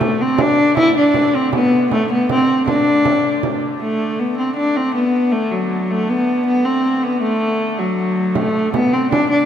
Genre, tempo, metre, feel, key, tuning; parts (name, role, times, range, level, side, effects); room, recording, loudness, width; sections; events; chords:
medieval dance; 105 BPM (dotted quarters); 6/8; straight; D mixolydian; A4 = 441 Hz
dark viola da gamba; melody; 0.0-9.5 s; F#3 to E4; -15 LUFS; left 1 dB
dark hurdy-gurdy; drone; 0.0-9.5 s; D3 to A3; -27 LUFS; left 2 dB
frame drum; percussion; 0.0-3.6, 8.4-9.3 s; -22 LUFS; right 5 dB
wet church reverb, RT60 2.8 s; -14 LUFS; side -9 dB against mid
0.0-3.8 A section; 3.8-9.5 B section